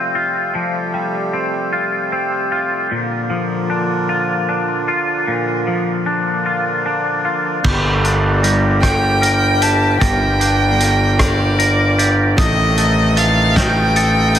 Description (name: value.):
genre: post-rock.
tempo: 51 BPM (dotted quarters).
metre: 6/8.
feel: straight.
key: G minor.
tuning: A4 = 440 Hz.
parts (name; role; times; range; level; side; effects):
hand-pumped harmonium; sustained chords; 0.0-14.4 s; C3 to Bb4; -24 LUFS; right 2 dB; none.
twangy electric guitar; arpeggios; 0.0-14.4 s; A2 to Bb4; -18 LUFS; left 2 dB; analog chorus, tape echo.
glockenspiel with rubber mallets; arpeggios; 7.6-14.4 s; Eb6 to Bb6; -23 LUFS; right 8 dB; tape echo.
fuzz fingered electric bass; bass; 7.6-14.4 s; G1 to A1; -16 LUFS; equal; overdrive.
loose indie drum kit; drums; 7.6-14.4 s; crash cymbal, hi-hat, kick drum, rim click, snare drum; -19 LUFS; equal; none.
warm violin; melody; 8.8-14.4 s; D5 to A5; -18 LUFS; left 1 dB; tape echo.
room: moderate huge ambient reverb, RT60 4.3 s.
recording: none.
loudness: -14 LUFS.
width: side -10 dB against mid.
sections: 0.0-7.6 A section; 7.6-14.4 B section.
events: none.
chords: 0.0 Fadd9; 2.9 Bb; 7.6 Gm; 12.4 Adim.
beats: | 0.55 1.73 | 2.91 4.09 | 5.28 6.46 | 7.64 8.83 | 10.01 11.19 | 12.38 13.56.